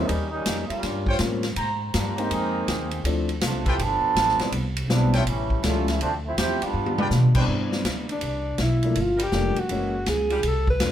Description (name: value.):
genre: jazz, big band swing.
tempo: 162 BPM.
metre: 4/4.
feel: swing 65% on 8ths.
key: C major.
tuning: A4 = 442 Hz.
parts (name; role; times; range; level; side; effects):
bright trombone section; second line; 0.0-7.4 s; Eb3 to A4; -26 LUFS; right 3 dB; none.
warm concert grand piano; accompaniment; 0.0-10.9 s; E3 to G5; -28 LUFS; left 1 dB; none.
upright bass; bass; 0.0-10.9 s; F1 to B2; -26 LUFS; equal; none.
swinging big-band drum kit; drums; 0.1-10.9 s; crash cymbal, hi-hat, kick drum, ride cymbal, snare drum, toms; -28 LUFS; equal; none.
warm trumpet section; stabs; 1.1-7.4 s; D4 to Bb5; -29 LUFS; left 1 dB; none.
warm saxophone section; sustained chords; 7.5-10.4 s; C3 to B4; -36 LUFS; right 1 dB; none.
mellow alto saxophone; melody; 8.1-10.9 s; D4 to B4; -25 LUFS; equal; plate reverb.
room: wet club reverb, RT60 0.7 s.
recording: heard from further back in the room.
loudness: -21 LUFS.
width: side -10 dB against mid.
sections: 0.0-7.5 A section; 7.5-10.9 B section.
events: trombone section solo 0.0-7.5; drum fill 6.7-7.1; alto saxophone solo 7.5-10.9.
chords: 0.1 Eb13; 1.6 Abmaj9; 3.1 Dm7; 3.8 G9; 4.5 Cmaj9; 5.3 A7b13; 6.0 Dm11; 6.7 G7; 7.5 Cmaj9; 9.0 Gm7; 9.7 F#9.